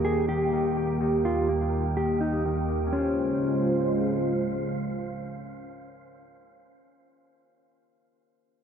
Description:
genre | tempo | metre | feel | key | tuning
hip hop | 125 BPM | 4/4 | half-time | Db lydian | A4 = 440 Hz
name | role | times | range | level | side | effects
mellow electric guitar | melody | 0.0-4.3 s | Db4 to Ab4 | -30 LUFS | left 1 dB | vibrato effect, low-pass filter, analog delay
dark analog pad | sustained chords | 0.0-6.3 s | Eb2 to C5 | -27 LUFS | right 2 dB | chorus, low-pass filter
Celtic harp | arpeggios | 0.0-6.3 s | Eb3 to C5 | -33 LUFS | left 5 dB | low-pass filter, analog delay
wind-like tuned noise texture | texture | 0.0-6.3 s | Db4 to G5 | -39 LUFS | right 3 dB | built-in reverb
room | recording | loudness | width
light reverb | echo-heavy mix | -24 LUFS | side -7 dB against mid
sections
0.0-2.9 A section; 2.9-6.8 B section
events
filter sweep 0.0-2.9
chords
0.0 Eb; 2.9 Dbmaj7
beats
0.04 0.53 | 1.00 1.49 1.97 2.44 | 2.92 3.40 3.88 4.37 | 4.84 5.33 5.80 6.29

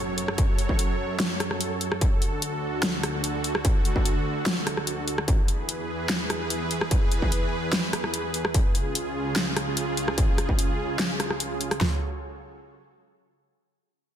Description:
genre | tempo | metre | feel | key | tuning
heavy wobble dubstep | 147 BPM | 4/4 | half-time | F# minor | A4 = 440 Hz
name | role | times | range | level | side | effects
supersaw pad | sustained chords | 0.0-12.0 s | C#2 to C#5 | -29 LUFS | right 1 dB | sidechain pumping
dubstep drum kit | drums | 0.2-11.8 s | handclaps, hi-hat, rim click, snare drum | -28 LUFS | equal | none
dubstep drum kit | drums | 0.4-11.9 s | kick drum, snare drum, toms | -23 LUFS | equal | distortion
room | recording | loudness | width
light reverb, digital ambience | dense, heavily limited modern master | -23 LUFS | side -9 dB against mid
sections
0.0-11.8 A section; 11.8-13.4 B section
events
none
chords
0.0 F#m; 2.0 D; 5.3 E; 8.5 C#; 11.8 F#m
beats
| 0.38 0.79 1.20 1.61 | 2.01 2.42 2.83 3.24 | 3.65 4.05 4.46 4.87 | 5.28 5.69 6.10 6.50 | 6.91 7.32 7.73 8.14 | 8.54 8.95 9.36 9.77 | 10.18 10.59 10.99 11.40 | 11.81

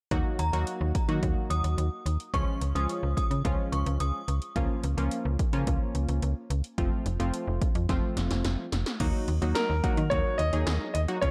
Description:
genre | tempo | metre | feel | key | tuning
synth-pop | 108 BPM | 4/4 | straight | unclear | A4 = 439 Hz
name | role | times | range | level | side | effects
funky polysynth comp | accompaniment | 0.1-11.3 s | F3 to Ab4 | -36 LUFS | equal | chorus
slap-like FM bass | bass | 0.1-11.3 s | F1 to Eb3 | -30 LUFS | equal | none
80s electronic pad drums | drums | 0.1-11.3 s | crash cymbal, hi-hat, kick drum, snare drum | -33 LUFS | equal | none
synth chime | second line | 0.4-4.4 s | Bb5 to Eb6 | -37 LUFS | equal | ensemble chorus, delay
warm grand piano | melody | 9.5-11.3 s | Bb4 to Eb5 | -31 LUFS | equal | delay
room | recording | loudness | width
light reverb, digital ambience | dark, warm production | -28 LUFS | mono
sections
0.1-9.0 A section; 9.0-11.3 B section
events
drum fill 7.9-9.0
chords
0.1 Ebm; 2.3 Db; 4.6 Bbm/Db; 6.8 F; 9.0 Ebm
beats
| 0.11 0.67 1.23 1.78 | 2.34 2.89 3.45 4.00 | 4.56 5.11 5.67 6.22 | 6.78 7.34 7.89 8.45 | 9.00 9.56 10.11 10.67 | 11.22

